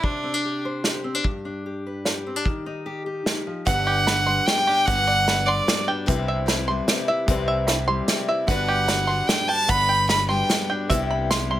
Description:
indie folk with a building arrangement; 149 BPM; 3/4; straight; G major; A4 = 440 Hz
clear fiddle; melody; 0.0-0.6, 3.7-5.9, 8.5-10.7 s; D4 to B5; -22 LUFS; right 1 dB
fingerpicked steel-string acoustic guitar; accompaniment; 0.0-11.6 s; G2 to C5; -30 LUFS; left 2 dB
unplugged drum kit; drums; 0.0-11.4 s; hi-hat, kick drum, snare drum; -23 LUFS; right 1 dB
clear upright piano; accompaniment; 3.7-11.6 s; G1 to G5; -35 LUFS; right 2 dB
picked acoustic archtop guitar; accompaniment; 3.7-11.6 s; G2 to B4; -31 LUFS; left 7 dB
bluegrass banjo; arpeggios; 3.7-11.6 s; G4 to C6; -26 LUFS; right 3 dB
fingered electric bass; bass; 3.7-11.6 s; G1 to C2; -27 LUFS; equal
light reverb; -20 LUFS; side -13 dB against mid
0.0-3.7 A section; 3.7-11.6 B section
upright piano fill 7.3-8.5
0.0 Csus2; 1.2 G; 2.5 Eb; 3.7 Gmaj7; 6.1 Cmaj7; 8.5 Gmaj7; 10.9 Cmaj7
| 0.03 0.44 0.84 | 1.24 1.65 2.05 | 2.45 2.85 3.26 | 3.66 4.06 4.46 | 4.87 5.27 5.67 | 6.07 6.47 6.87 | 7.28 7.68 8.08 | 8.48 8.88 9.29 | 9.69 10.09 10.49 | 10.90 11.30

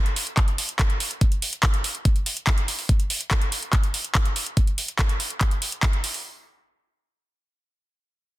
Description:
psychedelic trance; 143 BPM; 4/4; straight
garage drum kit; drums; 0.1-6.2 s; handclaps, hi-hat; -25 LUFS; equal
electronic kick drum; drums; 0.4-5.9 s; -21 LUFS; equal
little or no reverb; dense, heavily limited modern master; -21 LUFS; side -17 dB against mid
0.0-6.2 A section
0.37 0.79 | 1.21 1.63 2.05 2.47 | 2.89 3.31 3.73 4.15 | 4.57 4.99 5.41 5.83

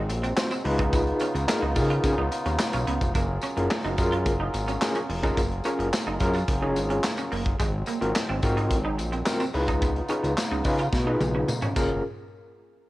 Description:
early-eighties boogie funk; 108 BPM; 4/4; straight; F# major; A4 = 438 Hz
pedal harmonium; sustained chords; 0.0-12.0 s; C#3 to A#4; -33 LUFS; equal; stereo widening, cassette tape
semi-hollow electric guitar; riff; 0.0-11.9 s; G#3 to E#4; -33 LUFS; right 3 dB; ensemble chorus, cassette tape
fat analog bass; bass; 0.0-12.0 s; E#1 to C#3; -28 LUFS; equal
modern studio drum kit; drums; 0.1-11.9 s; crash cymbal, handclaps, hi-hat, kick drum, snare drum, toms; -28 LUFS; equal
tambourine; percussion; 0.1-12.0 s; -41 LUFS; left 4 dB
overdriven tine electric piano; accompaniment; 0.4-12.0 s; B#3 to C#5; -28 LUFS; left 1 dB; medium tremolo, cassette tape
studio reverb; home recording on cassette; -23 LUFS; side -17 dB against mid
0.0-3.2 A section; 3.2-12.0 B section
drum fill 10.9-12.0
0.0 G#13; 0.7 C#9; 3.2 F#maj9; 7.6 G#13; 9.5 C#9; 11.8 F#maj9; 12.0 N.C.
0.37 | 0.93 1.49 2.04 2.60 | 3.15 3.71 4.26 4.82 | 5.37 5.93 6.49 7.04 | 7.60 8.15 8.71 9.26 | 9.82 10.37 10.93 11.48

